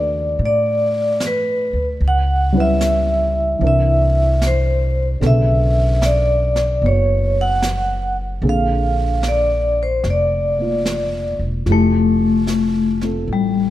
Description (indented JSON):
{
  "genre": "jazz ballad",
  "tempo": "74 BPM",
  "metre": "4/4",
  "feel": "swing 67% on 8ths",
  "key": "unclear",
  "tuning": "A4 = 440 Hz",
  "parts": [
    { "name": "vibraphone with medium hard mallets", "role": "melody", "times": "0.0-13.7 s", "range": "G3 to F#5", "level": "-18 LUFS", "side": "left 1 dB", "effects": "none" },
    { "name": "dark baby grand piano", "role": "accompaniment", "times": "0.0-13.7 s", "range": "C#3 to B4", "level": "-24 LUFS", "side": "right 1 dB", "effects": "none" },
    { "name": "upright bass", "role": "bass", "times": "0.0-13.7 s", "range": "E1 to A2", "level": "-19 LUFS", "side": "equal", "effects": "none" },
    { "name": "jazz brush drum kit", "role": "drums", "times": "0.4-13.7 s", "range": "brushed snare drum, hi-hat, snare drum", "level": "-30 LUFS", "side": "right 2 dB", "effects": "none" }
  ],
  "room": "light reverb",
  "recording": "dark, warm production",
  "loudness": "-15 LUFS",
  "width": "side -14 dB against mid",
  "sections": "0.0-11.7 A section; 11.7-13.7 B section",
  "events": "none",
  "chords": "0.0 D6; 2.0 C#m7b5; 3.6 C9; 5.2 Bm9; 8.4 Bb9; 11.7 Fmaj9",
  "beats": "0.38 1.19 | 2.00 2.80 3.61 4.41 | 5.21 6.01 6.82 7.62 | 8.42 9.23 10.04 10.86 | 11.67 12.48 13.29"
}